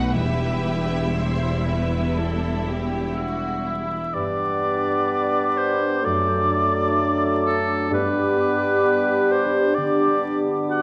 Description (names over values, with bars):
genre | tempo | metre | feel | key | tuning
classical, slow romantic movement for symphony orchestra | 58-65 BPM | 4/4 | rubato | E minor, G major from 4.2 s | A4 = 443 Hz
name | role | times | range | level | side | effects
clear symphonic violin section | melody | 0.0-3.1 s | E5 to F#5 | -35 LUFS | equal | none
rich symphonic violin section | second line | 0.0-4.2 s | E4 to C5 | -34 LUFS | equal | none
rich symphonic viola section | accompaniment | 0.0-3.9 s | G3 to E4 | -33 LUFS | equal | none
concert harp | arpeggios | 0.0-10.8 s | F#2 to D5 | -32 LUFS | equal | none
clear symphonic cello section | bass | 0.0-4.0 s | E2 to B2 | -31 LUFS | equal | none
rich symphonic double bass section | bass | 0.0-3.9 s | E1 to B1 | -30 LUFS | equal | none
warm oboe | second line | 3.2-10.8 s | A4 to F#5 | -27 LUFS | equal | none
mellow clarinet | second line | 4.1-10.8 s | F#4 to B4 | -30 LUFS | equal | none
mellow bassoon | accompaniment | 4.1-10.8 s | F#3 to G3 | -27 LUFS | equal | none
mellow large flute ensemble | second line | 4.2-10.8 s | D6 | -31 LUFS | equal | none
mellow French horn section | sustained chords | 4.2-10.8 s | A3 to D4 | -30 LUFS | equal | none
room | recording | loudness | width
wet scoring stage reverb, RT60 2.1 s | vinyl crackle | -22 LUFS | mono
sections
0.0-4.2 A section; 4.2-10.8 B section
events
none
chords
0.1 Em; 4.2 G; 6.0 D/F#; 7.9 G